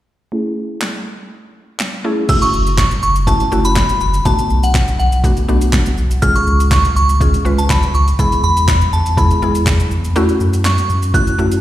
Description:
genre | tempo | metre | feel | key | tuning
dance-pop | 122 BPM | 4/4 | straight | F# minor | A4 = 440 Hz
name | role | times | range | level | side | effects
mallet-like synth pluck | accompaniment | 0.3-11.6 s | G#3 to B4 | -20 LUFS | equal | chorus, sidechain pumping, low-pass filter, slapback echo
deep house drum kit | drums | 0.8-11.6 s | crash cymbal, handclaps, hi-hat, kick drum, shaker, snare drum | -17 LUFS | equal | overdrive
glassy synth bell | melody | 2.3-11.6 s | F#5 to F#6 | -18 LUFS | equal | chorus, ping-pong delay, slapback echo
saturated sub bass | bass | 2.5-11.6 s | F#1 to F#2 | -15 LUFS | equal | sidechain pumping
room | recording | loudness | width
digital ambience | live gig heard through the venue's PA, recital hall reverb | -12 LUFS | side -13 dB against mid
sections
0.3-2.3 A section; 2.3-11.6 B section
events
filter sweep on synth pluck 0.3-2.3; kick muted 10.2-11.1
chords
0.3 Amaj7; 2.3 F#m7; 4.3 Bm7; 6.2 C#; 8.2 E; 10.2 F#m7

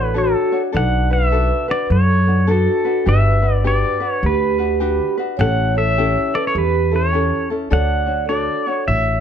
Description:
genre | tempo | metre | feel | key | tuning
Hawaiian | 103 BPM | 4/4 | swing 63% on 8ths | D major | A4 = 441 Hz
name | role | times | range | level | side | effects
pedal steel guitar | melody | 0.0-9.2 s | A4 to F#5 | -21 LUFS | left 1 dB | plate reverb
vibraphone with soft mallets | second line | 0.0-9.2 s | F#4 to D5 | -22 LUFS | right 3 dB | none
ukulele | accompaniment | 0.0-9.2 s | C#4 to C#5 | -24 LUFS | left 5 dB | none
upright bass | bass | 0.0-9.2 s | G1 to F#2 | -18 LUFS | equal | none
room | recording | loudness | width
light reverb | dark, warm production | -15 LUFS | side -8 dB against mid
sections
0.0-9.2 A section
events
none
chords
0.0 Dmaj7; 0.7 Bm7; 3.1 Gmaj7; 5.4 A7; 7.7 Dmaj7

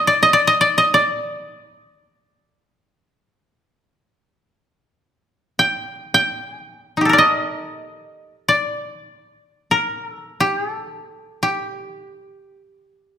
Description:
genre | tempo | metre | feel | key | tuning
japanese traditional, Japanese chamber music | free time | none | none | G hirajoshi | A4 = 440 Hz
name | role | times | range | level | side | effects
koto | solo | 0.0-13.2 s | Eb4 to G5 | -16 LUFS | equal | none
room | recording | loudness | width
moderate recital hall reverb, RT60 1.6 s | minimal, uncompressed stereo recording | -16 LUFS | side -9 dB against mid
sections
0.0-13.2 A section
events
none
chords
none

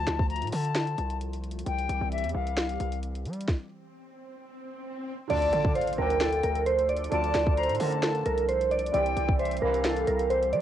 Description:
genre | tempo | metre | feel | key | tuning
hip hop, trap | 132 BPM | 4/4 | half-time | D minor | A4 = 442 Hz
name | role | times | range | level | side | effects
silver concert flute | second line | 0.0-10.3 s | E5 to Bb5 | -33 LUFS | left 9 dB | cassette tape, analog delay, plate reverb
hollow soft pad | sustained chords | 0.0-10.6 s | D3 to A4 | -41 LUFS | equal | ensemble chorus, cassette tape, plate reverb
hard-hitting 808-style bass | bass | 0.0-10.6 s | C2 to G3 | -31 LUFS | equal | none
trap drum kit | drums | 0.1-10.6 s | crash cymbal, hi-hat, kick drum, snare drum | -30 LUFS | equal | none
swell and impact | sound effects | 3.9-7.1 s | none | -41 LUFS | equal | none
glassy digital keys | melody | 5.3-10.6 s | A4 to D5 | -26 LUFS | right 2 dB | chorus, low-pass filter, cassette tape, plate reverb
felt-muted upright piano | accompaniment | 5.3-10.6 s | C3 to A4 | -37 LUFS | right 12 dB | low-pass filter, cassette tape, plate reverb
clear brass ensemble | stabs | 5.3-10.1 s | A1 to E3 | -39 LUFS | right 9 dB | cassette tape, analog delay, plate reverb
room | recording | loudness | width
moderate studio reverb, RT60 0.5 s | home recording on cassette | -25 LUFS | side -11 dB against mid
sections
0.0-5.3 A section; 5.3-10.6 B section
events
stop 3.5-5.3; swell 3.9-5.3; impact 5.3-7.1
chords
0.0 Dm; 1.7 C; 3.5 N.C.; 5.3 Dm; 8.9 C

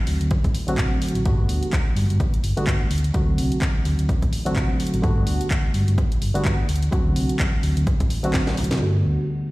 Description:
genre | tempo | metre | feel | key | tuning
filtered disco house | 127 BPM | 4/4 | swing 57% on 16ths | G major | A4 = 440 Hz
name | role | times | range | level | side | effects
reed electric piano | accompaniment | 0.0-9.5 s | D3 to F#4 | -25 LUFS | equal | phaser, sidechain pumping, low-pass filter
hollow-body short-scale fingered electric bass | bass | 0.1-9.2 s | G1 to B2 | -22 LUFS | equal | sidechain pumping, low-pass filter
house drum kit | drums | 0.1-8.9 s | crash cymbal, handclaps, hi-hat, snare drum | -31 LUFS | equal | sidechain pumping on hats, low-pass filter on hats, low-pass filter on snare, sidechain pumping on cymbals, low-pass filter on cymbals
electronic kick drum | drums | 0.3-8.4 s | none | -22 LUFS | equal | overdrive
room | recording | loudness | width
digital ambience | played on a big sound system in a bare room, stone room reverb | -19 LUFS | side -20 dB against mid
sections
0.0-8.8 A section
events
drum fill 8.3-8.8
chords
0.0 D7; 1.3 Gmaj9; 2.9 D7; 5.0 Gmaj9; 6.7 D7; 8.8 Gmaj9

